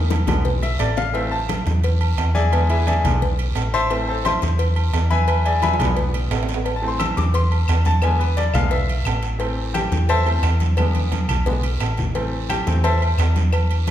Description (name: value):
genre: latin, salsa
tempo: 175 BPM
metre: 4/4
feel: straight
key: A harmonic minor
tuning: A4 = 440 Hz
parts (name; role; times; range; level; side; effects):
- bright baby grand piano; accompaniment; 0.0-13.0 s; D3 to E6; -23 LUFS; left 2 dB; none
- hollow-body short-scale fingered electric bass; bass; 0.0-13.9 s; A1 to E2; -20 LUFS; equal; none
- congas; percussion; 0.1-13.9 s; none; -28 LUFS; left 1 dB; none
- cowbell and bongos; percussion; 0.1-13.9 s; none; -30 LUFS; left 2 dB; none
- guiro; percussion; 0.1-13.9 s; none; -35 LUFS; right 7 dB; none
- timbales and agogo bells; percussion; 0.1-13.9 s; none; -28 LUFS; right 4 dB; none
- claves; percussion; 7.0-13.7 s; none; -36 LUFS; left 3 dB; none
room: wet recital hall reverb, RT60 1.3 s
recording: recorded in a church or concert hall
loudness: -17 LUFS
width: side -11 dB against mid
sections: 0.0-13.9 A section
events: drum fill 0.0-1.1, 5.6-6.7, 10.8-12.2; grand piano solo 0.0-13.9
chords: 0.0 E7; 1.1 Am; 2.5 E7; 3.9 Am; 5.3 E7; 6.7 Am; 8.0 E7; 9.4 Am; 10.8 E7; 12.2 Am